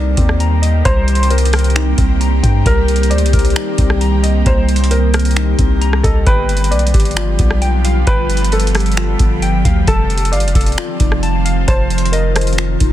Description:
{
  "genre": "hip hop, atmospheric cloud-rap",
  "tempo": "133 BPM",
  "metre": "4/4",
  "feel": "half-time",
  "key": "C dorian",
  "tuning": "A4 = 442 Hz",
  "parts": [
    { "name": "felt-muted upright piano", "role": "melody", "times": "0.0-12.9 s", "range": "A4 to D5", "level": "-22 LUFS", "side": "equal", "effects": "low-pass filter, digital delay" },
    { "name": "ethereal airy pad", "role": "sustained chords", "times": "0.0-12.9 s", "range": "D3 to G4", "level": "-20 LUFS", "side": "right 1 dB", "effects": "ensemble chorus, built-in reverb, phaser, sidechain pumping" },
    { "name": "warbly dusty pluck", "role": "arpeggios", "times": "0.0-12.9 s", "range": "B3 to Bb5", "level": "-24 LUFS", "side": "left 5 dB", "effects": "chorus, low-pass filter, digital delay" },
    { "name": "long sustained 808-style bass", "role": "bass", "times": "0.0-12.9 s", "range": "F1 to G2", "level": "-14 LUFS", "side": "equal", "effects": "none" },
    { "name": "booming analog drum machine", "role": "drums", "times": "0.2-12.9 s", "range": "finger snaps, hi-hat, kick drum, rim click", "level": "-17 LUFS", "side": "equal", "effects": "vintage 12-bit sampler grit, soft clipping on snare" }
  ],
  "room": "digital ambience",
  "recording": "dense, heavily limited modern master",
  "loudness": "-11 LUFS",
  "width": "side -12 dB against mid",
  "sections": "0.0-12.9 A section",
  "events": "none",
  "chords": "0.0 Cm7; 6.3 G7; 9.9 F7",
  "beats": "0.40 | 0.85 1.30 1.75 2.21 | 2.66 3.11 3.56 4.01 | 4.46 4.91 5.36 5.82 | 6.27 6.72 7.17 7.62 | 8.07 8.52 8.97 9.42 | 9.88 10.33 10.78 11.23 | 11.68 12.13 12.58"
}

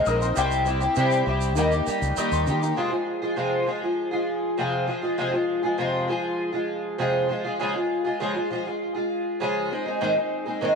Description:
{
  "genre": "acoustic pop",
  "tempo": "100 BPM",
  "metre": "4/4",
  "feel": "straight",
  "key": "F minor",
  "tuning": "A4 = 440 Hz",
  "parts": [
    { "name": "dark upright piano", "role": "accompaniment", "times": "0.0-2.9 s", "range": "Eb4 to F6", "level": "-31 LUFS", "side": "left 10 dB", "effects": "none" },
    { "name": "fingerpicked twelve-string acoustic guitar", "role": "accompaniment", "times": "0.0-10.8 s", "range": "F2 to Bb4", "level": "-23 LUFS", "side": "equal", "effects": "double-tracked left and right" },
    { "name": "mellow fretless electric bass", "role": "bass", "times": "0.1-2.7 s", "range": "Bb1 to Eb3", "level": "-26 LUFS", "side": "equal", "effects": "none" },
    { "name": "tube shaker", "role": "percussion", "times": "0.1-2.8 s", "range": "none", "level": "-39 LUFS", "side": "right 14 dB", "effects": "none" }
  ],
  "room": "moderate echo chamber reverb, RT60 2.2 s",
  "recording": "1960s-style stereo with parts hard left and right",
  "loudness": "-22 LUFS",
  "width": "side -5 dB against mid",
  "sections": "0.0-2.8 A section; 2.8-10.8 B section",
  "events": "none",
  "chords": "0.4 C; 1.6 Eb; 2.8 Fm; 7.6 Db; 9.7 Ab",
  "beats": "| 0.37 0.97 1.57 2.17 | 2.77 3.37 3.98 4.58 | 5.18 5.79 6.39 6.99 | 7.60 8.20 8.80 9.41 | 10.01 10.62"
}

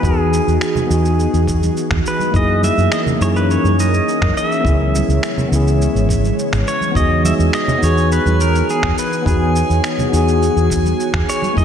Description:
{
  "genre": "sunset chillout",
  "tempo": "104 BPM",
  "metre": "4/4",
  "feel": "straight",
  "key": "E lydian",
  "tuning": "A4 = 439 Hz",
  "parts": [
    { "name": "pedal steel guitar", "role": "melody", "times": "0.0-11.6 s", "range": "G#4 to E5", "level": "-21 LUFS", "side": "right 1 dB", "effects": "analog delay" },
    { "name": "tine electric piano", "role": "accompaniment", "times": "0.0-11.6 s", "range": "A#3 to G#4", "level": "-20 LUFS", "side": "left 1 dB", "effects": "auto-pan, analog delay" },
    { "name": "ethereal airy pad", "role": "sustained chords", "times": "0.0-11.6 s", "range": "C#3 to D#5", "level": "-22 LUFS", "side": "left 1 dB", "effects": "ensemble chorus, built-in reverb" },
    { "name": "mellow fretless electric bass", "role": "bass", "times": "0.0-11.6 s", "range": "G#1 to F#2", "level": "-16 LUFS", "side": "equal", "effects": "none" },
    { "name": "electronic cabasa and finger snaps", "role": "drums", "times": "0.0-11.6 s", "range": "none", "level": "-27 LUFS", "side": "right 1 dB", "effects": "none" },
    { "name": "electronic kick drum", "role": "drums", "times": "0.0-11.6 s", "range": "none", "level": "-20 LUFS", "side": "equal", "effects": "none" },
    { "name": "congas", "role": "percussion", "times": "0.8-11.5 s", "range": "none", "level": "-26 LUFS", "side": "right 3 dB", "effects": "none" },
    { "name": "drifting glass-harmonics texture", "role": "texture", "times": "7.3-11.6 s", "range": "G#5", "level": "-30 LUFS", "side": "right 1 dB", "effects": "chorus, built-in reverb" }
  ],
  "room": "moderate lush hall reverb, RT60 2.1 s",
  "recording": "dreamy mix soaked in reverb",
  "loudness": "-13 LUFS",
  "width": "side -8 dB against mid",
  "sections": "0.0-11.6 A section",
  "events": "break 6.4-7.0",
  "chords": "0.0 Emaj9; 2.3 F#13; 4.6 C#m7; 7.0 Emaj9",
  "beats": "| 0.03 0.61 1.19 1.76 | 2.34 2.92 3.49 4.07 | 4.65 5.22 5.80 6.38 | 6.96 7.53 8.11 8.69 | 9.26 9.84 10.42 10.99 | 11.57"
}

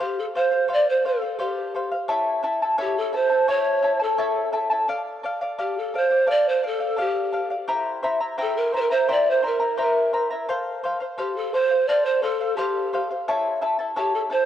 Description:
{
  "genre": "andean folk",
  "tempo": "86 BPM",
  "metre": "4/4",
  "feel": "straight",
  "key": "unclear",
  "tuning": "A4 = 440 Hz",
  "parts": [
    { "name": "mellow hollow pan flute", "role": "melody", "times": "0.0-14.5 s", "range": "G4 to D5", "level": "-22 LUFS", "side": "right 1 dB", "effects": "cassette tape" },
    { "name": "charango", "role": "accompaniment", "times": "0.0-14.5 s", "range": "E4 to Bb5", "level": "-24 LUFS", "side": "left 2 dB", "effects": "cassette tape" }
  ],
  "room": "moderate lush hall reverb, RT60 2.5 s",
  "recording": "home recording on cassette",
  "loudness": "-20 LUFS",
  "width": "side -10 dB against mid",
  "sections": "0.0-14.5 A section",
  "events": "none",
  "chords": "0.0 F; 2.1 A; 4.9 Dm; 7.7 C7; 10.5 F; 13.3 A",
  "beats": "0.00 0.69 1.40 | 2.09 2.79 3.49 4.19 | 4.89 5.59 6.29 6.99 | 7.68 8.38 9.08 9.78 | 10.48 11.17 11.87 12.57 | 13.26 13.96"
}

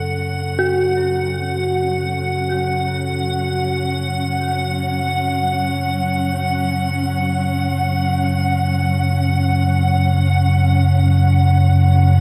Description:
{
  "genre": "ambient",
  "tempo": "free time",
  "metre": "none",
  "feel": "none",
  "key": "F# minor",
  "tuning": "A4 = 440 Hz",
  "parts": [
    { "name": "dark symphonic cello section", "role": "sustained chords", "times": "0.0-12.2 s", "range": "F#3 to F#5", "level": "-26 LUFS", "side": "equal", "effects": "none" },
    { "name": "dark detuned synth bell", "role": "arpeggios", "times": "0.0-12.2 s", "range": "F#4 to A4", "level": "-26 LUFS", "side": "equal", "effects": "chorus, phaser, diffuse ambient delay" },
    { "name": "deep rumbling drone", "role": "drone", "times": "0.0-12.2 s", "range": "F#2 to C#3", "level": "-20 LUFS", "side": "equal", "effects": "built-in reverb" },
    { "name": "icy glass pad", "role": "texture", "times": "0.0-12.2 s", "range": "F#5", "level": "-27 LUFS", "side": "equal", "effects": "chorus, built-in reverb" }
  ],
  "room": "wet cathedral reverb, RT60 6.5 s",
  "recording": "in a vast, echoing space",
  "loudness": "-18 LUFS",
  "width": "mono",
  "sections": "0.0-12.2 A section",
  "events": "fade-in on cello section 0.0-12.2; filter sweep on synth drone 0.0-12.2",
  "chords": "0.0 F#5",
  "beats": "free time"
}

